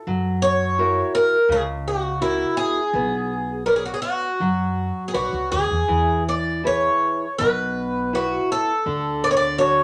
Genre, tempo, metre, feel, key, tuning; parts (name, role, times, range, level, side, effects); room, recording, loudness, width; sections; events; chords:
fado-style ballad; 82 BPM; 4/4; rubato; A4 = 440 Hz
nylon-string guitar; accompaniment; 0.1-9.8 s; B2 to D5; -28 LUFS; equal
upright bass; bass; 0.1-9.8 s; B1 to F#2; -31 LUFS; equal
picked twelve-string acoustic guitar; melody; 0.4-9.8 s; E4 to D5; -23 LUFS; equal
moderate studio ambience, RT60 0.5 s; -22 LUFS; mono
0.0-9.8 A section
0.1 F#7; 2.9 Bmadd9; 5.9 E; 8.9 D